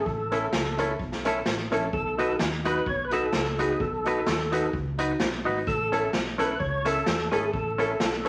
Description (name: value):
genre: ska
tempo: 128 BPM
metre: 4/4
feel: swing 54% on 8ths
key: unclear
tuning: A4 = 440 Hz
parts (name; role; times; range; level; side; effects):
- percussive tonewheel organ; melody; 0.0-8.3 s; G#4 to C#5; -31 LUFS; equal; overdrive, chorus vibrato, slow rotary speaker
- hollow-body short-scale fingered electric bass; bass; 0.0-8.3 s; G#1 to E2; -37 LUFS; equal; none
- street-band drum kit; drums; 0.1-8.3 s; hi-hat, kick drum, snare drum; -33 LUFS; equal; slapback echo
- semi-hollow electric guitar; accompaniment; 0.3-8.3 s; C#4 to B4; -33 LUFS; equal; slapback echo
- dark upright piano; stabs; 0.3-8.3 s; C#4 to B4; -33 LUFS; equal; none
room: wet studio reverb, RT60 0.6 s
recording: vinyl crackle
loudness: -27 LUFS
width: mono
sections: 0.0-8.3 A section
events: none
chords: 0.0 A; 1.9 B; 5.7 A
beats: | 0.06 0.53 1.00 1.46 | 1.93 2.40 2.87 3.33 | 3.80 4.27 4.73 5.20 | 5.67 6.13 6.60 7.07 | 7.53 8.00